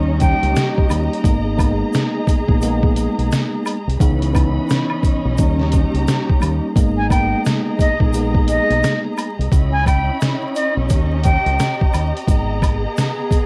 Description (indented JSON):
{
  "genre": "hip hop, boom-bap hip-hop",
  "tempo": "87 BPM",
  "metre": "4/4",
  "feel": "swing 60% on 16ths",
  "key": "G# harmonic minor",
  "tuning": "A4 = 436 Hz",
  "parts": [
    { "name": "mellow tine electric piano", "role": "accompaniment", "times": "0.0-9.3 s", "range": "E3 to D#4", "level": "-24 LUFS", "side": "equal", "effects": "cassette tape, high-pass filter, low-pass filter" },
    { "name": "warm studio string section", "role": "sustained chords", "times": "0.0-13.5 s", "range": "E3 to B5", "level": "-27 LUFS", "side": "equal", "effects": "high-pass filter, low-pass filter, cassette tape" },
    { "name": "deep dub fingered electric bass", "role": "bass", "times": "0.0-12.8 s", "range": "G#1 to D#2", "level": "-22 LUFS", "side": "equal", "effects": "transformer saturation" },
    { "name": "breathy bright concert flute", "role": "melody", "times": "0.2-0.7, 7.0-11.8 s", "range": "D#5 to G#5", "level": "-24 LUFS", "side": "equal", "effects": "high-pass filter, low-pass filter, cassette tape, tape echo" },
    { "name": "trip hop sampler-style drum kit", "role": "drums", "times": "0.2-13.5 s", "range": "hi-hat, kick drum, snare drum", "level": "-20 LUFS", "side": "equal", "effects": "none" },
    { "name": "tube shaker and woodblock", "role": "percussion", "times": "0.2-13.5 s", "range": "none", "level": "-33 LUFS", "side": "equal", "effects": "none" }
  ],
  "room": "light reverb",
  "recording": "home recording on cassette, vinyl crackle",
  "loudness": "-17 LUFS",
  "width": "mono",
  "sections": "0.0-13.5 A section",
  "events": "none",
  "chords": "0.0 D#7; 1.2 G#madd9; 4.0 C#m9; 5.4 D#7; 6.8 G#madd9; 9.5 C#m9; 10.9 D#7; 12.3 G#madd9",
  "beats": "0.56 | 1.24 1.93 2.62 3.31 | 4.00 4.69 5.38 6.07 | 6.76 7.45 8.14 8.83 | 9.52 10.21 10.90 11.59 | 12.28 12.97"
}